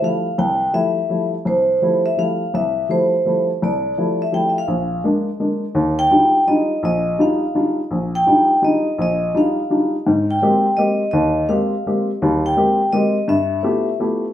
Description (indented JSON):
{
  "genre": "jazz",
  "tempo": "167 BPM",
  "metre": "3/4",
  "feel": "swing 64% on 8ths",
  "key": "F major, Eb major from 5.8 s",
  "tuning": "A4 = 440 Hz",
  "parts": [
    { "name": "vibraphone with medium hard mallets", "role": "melody", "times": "0.0-14.0 s", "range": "C5 to G5", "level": "-18 LUFS", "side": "equal", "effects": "none" },
    { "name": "warm upright piano", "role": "accompaniment", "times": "0.0-14.2 s", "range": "Bb1 to G4", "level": "-18 LUFS", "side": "left 1 dB", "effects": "none" }
  ],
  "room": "wet studio reverb, RT60 0.8 s",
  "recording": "band playing live in one room",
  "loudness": "-16 LUFS",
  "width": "side -11 dB against mid",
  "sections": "0.0-5.8 A section; 5.8-14.3 B section",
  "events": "none",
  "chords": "0.0 Fmaj9; 4.7 Bb7; 5.8 Ebmaj9; 10.1 Abmaj9; 13.3 G13"
}